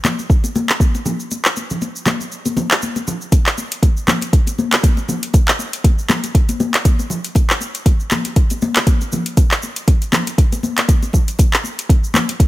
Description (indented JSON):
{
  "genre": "house",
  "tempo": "119 BPM",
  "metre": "4/4",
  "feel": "swing 55% on 16ths",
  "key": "none",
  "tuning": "none",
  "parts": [
    { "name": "afro-pop drum kit", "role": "drums", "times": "0.0-12.5 s", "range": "cabasa, handclaps, hi-hat", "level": "-19 LUFS", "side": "equal", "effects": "small room ambience" },
    { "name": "congas", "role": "percussion", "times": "0.0-12.4 s", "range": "none", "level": "-21 LUFS", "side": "left 2 dB", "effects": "none" },
    { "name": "electronic kick drum", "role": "drums", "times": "0.3-12.5 s", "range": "none", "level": "-13 LUFS", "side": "equal", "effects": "small room ambience" }
  ],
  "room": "little or no reverb",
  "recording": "none",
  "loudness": "-14 LUFS",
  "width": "side -16 dB against mid",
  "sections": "0.0-12.5 A section",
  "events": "break 1.3-3.3",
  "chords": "none"
}